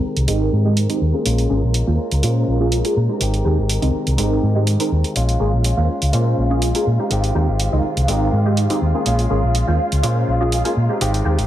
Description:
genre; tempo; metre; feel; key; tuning
filtered disco house; 123 BPM; 4/4; straight; Ab major; A4 = 440 Hz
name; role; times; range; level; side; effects
funky polysynth comp; accompaniment; 0.0-11.4 s; Ab3 to C5; -22 LUFS; right 1 dB; chorus, phaser, low-pass filter
rich chamber string section; sustained chords; 0.0-11.5 s; F4 to Bb5; -28 LUFS; right 2 dB; low-pass filter
direct-recorded clean electric guitar; riff; 0.0-11.5 s; Eb3 to G4; -26 LUFS; left 2 dB; low-pass filter, dub echo
hollow-body short-scale fingered electric bass; bass; 0.0-11.5 s; Ab1 to Bb2; -18 LUFS; equal; low-pass filter
tube shaker; percussion; 0.0-11.5 s; none; barely audible; none; none
electronic hi-hat; drums; 0.2-11.5 s; none; -26 LUFS; right 2 dB; none
room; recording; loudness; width
light reverb, digital ambience; echo-heavy mix; -16 LUFS; side -12 dB against mid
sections
0.0-11.5 A section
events
filter sweep 0.0-11.5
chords
0.0 Abmaj7

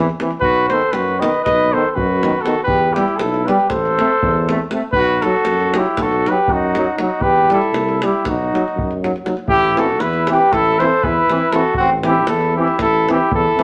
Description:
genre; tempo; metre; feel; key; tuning
balkan folk, Balkan brass band; 238 BPM (eighths); 9/8; straight; unclear; A4 = 440 Hz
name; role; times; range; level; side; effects
brilliant trombone; accompaniment; 0.0-13.6 s; D#3 to A3; -24 LUFS; equal; none
warm euphonium; accompaniment; 0.0-13.6 s; B3 to E4; -30 LUFS; equal; none
warm tuba; bass; 0.0-13.5 s; A1 to F#2; -26 LUFS; equal; none
davul; percussion; 0.1-13.6 s; none; -28 LUFS; equal; none
warm cornet; melody; 0.4-13.6 s; F#4 to D#5; -21 LUFS; equal; none
warm flugelhorn; second line; 0.4-13.6 s; C4 to B4; -21 LUFS; equal; none
room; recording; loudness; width
wet studio reverb, RT60 0.9 s; none; -16 LUFS; mono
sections
0.0-9.5 A section; 9.5-13.6 B section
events
none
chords
0.4 B; 2.7 Em; 3.7 Am; 4.9 B; 7.2 Em; 8.2 B; 9.5 Am

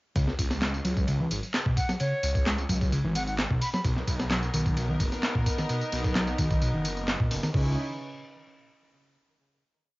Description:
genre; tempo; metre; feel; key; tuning
breakbeat, breaks; 130 BPM; 4/4; straight; C# dorian; A4 = 439 Hz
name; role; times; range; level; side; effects
hollow-body short-scale picked electric bass; riff; 0.2-7.8 s; A#2 to G#3; -29 LUFS; equal; tube saturation, cassette tape
phased detuned saw bass; bass; 0.2-7.8 s; F#1 to C#2; -31 LUFS; equal; phaser, tube saturation
breakbeat sampler-style drum kit; drums; 0.2-7.6 s; crash cymbal, hi-hat, kick drum, ride cymbal, snare drum; -30 LUFS; equal; none
punchy analog drum machine; drums; 0.2-7.5 s; handclaps, ride cymbal, tambourine; -34 LUFS; equal; none
silver concert flute; melody; 1.8-3.8 s; C#5 to B5; -34 LUFS; equal; small speaker sound, vintage 12-bit sampler grit, tape echo
rich studio string section; sustained chords; 3.8-7.8 s; C#3 to B4; -35 LUFS; equal; sidechain pumping, cassette tape
room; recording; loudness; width
light reverb, digital ambience; home recording on cassette, nothing above 7.5 kHz; -25 LUFS; side -21 dB against mid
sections
0.2-7.5 drop; 7.5-9.4 final chord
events
drop 0.2-7.5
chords
0.2 C#5; 3.8 Bmaj7; 7.5 N.C.

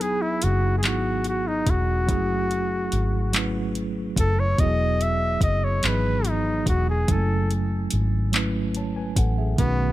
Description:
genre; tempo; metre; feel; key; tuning
slow six-eight R&B; 48 BPM (dotted quarters); 6/8; straight; F# dorian; A4 = 440 Hz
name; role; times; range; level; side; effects
warm flugelhorn; melody; 0.0-9.9 s; B3 to E5; -26 LUFS; left 1 dB; tape echo
mellow tine electric piano; accompaniment; 0.0-9.9 s; D#3 to A5; -28 LUFS; right 2 dB; medium stereo tremolo
vintage muted fingered electric bass; bass; 0.0-9.9 s; E1 to B1; -24 LUFS; equal; none
smooth R&B drum kit; drums; 0.0-9.8 s; handclaps, hi-hat, kick drum; -25 LUFS; equal; none
room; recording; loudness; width
little or no reverb; none; -21 LUFS; side -15 dB against mid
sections
0.0-9.6 A section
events
break 0.0-0.8; flugelhorn solo 0.0-9.6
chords
0.0 Emaj9; 2.1 F#m9; 4.6 Emaj9; 7.1 F#m9

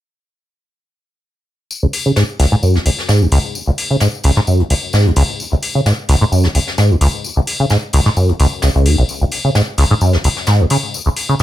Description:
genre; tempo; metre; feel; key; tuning
acid house; 130 BPM; 4/4; swing 54% on 16ths; unclear; A4 = 440 Hz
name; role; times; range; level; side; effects
jazz brush drum kit; drums; 1.7-11.4 s; hi-hat, snare drum, tambourine; -24 LUFS; left 2 dB; high-pass filter on hats, high-pass filter on snare, high-pass filter on perc, high-pass filter on room
acid bass, saw; riff; 1.8-11.4 s; B1 to C#3; -12 LUFS; equal; wide subtle chorus, vintage 12-bit sampler grit, ping-pong delay
electronic hi-hat; drums; 1.9-11.3 s; none; -23 LUFS; left 3 dB; none
room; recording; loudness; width
moderate studio reverb, RT60 0.6 s; none; -12 LUFS; side -13 dB against mid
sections
1.7-11.4 A section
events
filter sweep on acid bass 1.7-11.4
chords
none

